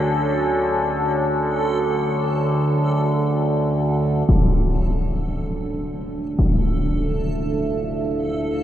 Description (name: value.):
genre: dark ambient drone.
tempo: free time.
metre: none.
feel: none.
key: unclear.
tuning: A4 = 440 Hz.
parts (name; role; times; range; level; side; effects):
deep dark ambient pad; sustained chords; 0.0-8.6 s; D4 to A5; -24 LUFS; equal; chorus, built-in reverb.
overtone-sweeping drone; drone; 0.0-8.6 s; D2 to D3; -23 LUFS; right 1 dB; chorus, built-in reverb.
backwards swelling texture; texture; 0.0-8.6 s; A4; -32 LUFS; right 2 dB; built-in reverb.
impact; percussion; 4.3-6.6 s; none; -21 LUFS; equal; low-pass filter on sfx.
room: wet cathedral reverb, RT60 6.1 s.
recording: none.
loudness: -19 LUFS.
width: side -11 dB against mid.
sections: 0.0-4.3 A section; 4.3-8.6 B section.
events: fade-in on synth drone 4.3-8.6; fade-in on synth texture 4.3-8.6.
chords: 0.0 F#m; 4.3 Dmadd9.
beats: free time.